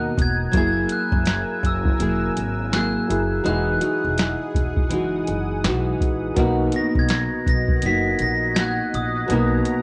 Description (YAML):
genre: indie pop, bedroom pop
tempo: 82 BPM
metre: 4/4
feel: swing 60% on 16ths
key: B major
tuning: A4 = 440 Hz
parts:
  - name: glockenspiel with hard plastic mallets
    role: melody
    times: 0.0-9.8 s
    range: D#6 to B6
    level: -29 LUFS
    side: equal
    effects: lush chorus, cassette tape
  - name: clear upright piano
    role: accompaniment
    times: 0.0-9.8 s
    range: F#3 to A#4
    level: -30 LUFS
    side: equal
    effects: none
  - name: nylon-string guitar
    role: accompaniment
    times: 0.0-9.8 s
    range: B2 to G#4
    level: -27 LUFS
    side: equal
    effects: lush chorus, warbly pitch drift
  - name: warm analog pad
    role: sustained chords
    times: 0.0-9.8 s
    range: F#4 to E6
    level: -37 LUFS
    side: equal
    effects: chorus
  - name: upright bass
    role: bass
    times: 0.0-9.6 s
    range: E1 to B1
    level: -29 LUFS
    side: equal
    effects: none
  - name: soft vintage rhythm box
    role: drums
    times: 0.2-9.8 s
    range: hi-hat, kick drum, snare drum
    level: -25 LUFS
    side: equal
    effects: cassette tape
room: studio ambience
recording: home recording on cassette, nothing above 10.8 kHz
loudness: -21 LUFS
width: mono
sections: 0.0-9.8 A section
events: none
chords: 0.0 Bmaj7; 0.5 F#9; 3.5 Emaj9; 6.4 Bmaj7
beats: | 0.53 1.26 2.00 2.73 | 3.46 4.19 4.92 5.65 | 6.38 7.11 7.84 8.57 | 9.30